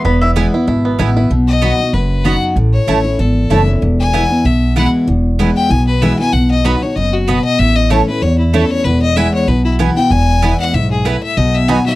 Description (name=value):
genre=bluegrass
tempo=191 BPM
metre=4/4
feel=swing 55% on 8ths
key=E major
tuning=A4 = 440 Hz
part: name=picked steel-string acoustic guitar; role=accompaniment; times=0.0-12.0 s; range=E2 to F#4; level=-15 LUFS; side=left 1 dB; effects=none
part: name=bluegrass banjo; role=arpeggios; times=0.0-1.3, 11.7-11.8 s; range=B3 to F#4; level=-20 LUFS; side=right 5 dB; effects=none
part: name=upright bass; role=bass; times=0.0-11.8 s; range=E1 to E2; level=-15 LUFS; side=equal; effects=none
part: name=mandolin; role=stabs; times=0.4-11.8 s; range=A3 to B5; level=-18 LUFS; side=right 8 dB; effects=none
part: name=clear fiddle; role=second line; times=1.5-12.0 s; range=E4 to G#5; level=-18 LUFS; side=left 4 dB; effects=none
room=little or no reverb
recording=dry, close 1970s-style studio recording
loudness=-11 LUFS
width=side -17 dB against mid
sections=0.0-1.3 A section; 1.3-12.0 B section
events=fiddle solo 1.3-12.0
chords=0.0 E; 1.3 B; 2.6 A; 3.8 E; 6.3 B; 7.6 A; 8.9 E; 11.4 B